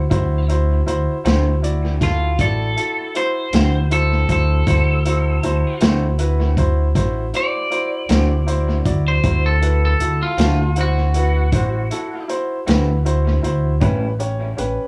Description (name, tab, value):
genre	slow blues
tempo	52 BPM (dotted quarters)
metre	12/8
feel	straight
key	D mixolydian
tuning	A4 = 440 Hz
part	lightly driven lead guitar	melody	0.0-12.3 s	F4 to F#5	-25 LUFS	equal	none
part	bright upright piano	accompaniment	0.0-14.9 s	C#4 to D5	-26 LUFS	equal	none
part	upright bass	bass	0.0-14.8 s	A1 to D2	-20 LUFS	equal	none
part	vintage drum kit	drums	0.1-14.8 s	hi-hat, kick drum, snare drum	-24 LUFS	equal	dub echo
part	electric guitar through a small old amp	accompaniment	1.2-14.1 s	A2 to F#4	-30 LUFS	equal	tremolo, dub echo
room	little or no reverb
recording	echo-heavy mix, small room ambience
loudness	-18 LUFS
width	mono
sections	0.0-14.9 A section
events	none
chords	0.0 D7; 13.8 A7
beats	| 0.12 1.26 2.40 3.54 | 4.67 5.82 6.96 8.10 | 9.24 10.38 11.53 12.67 | 13.82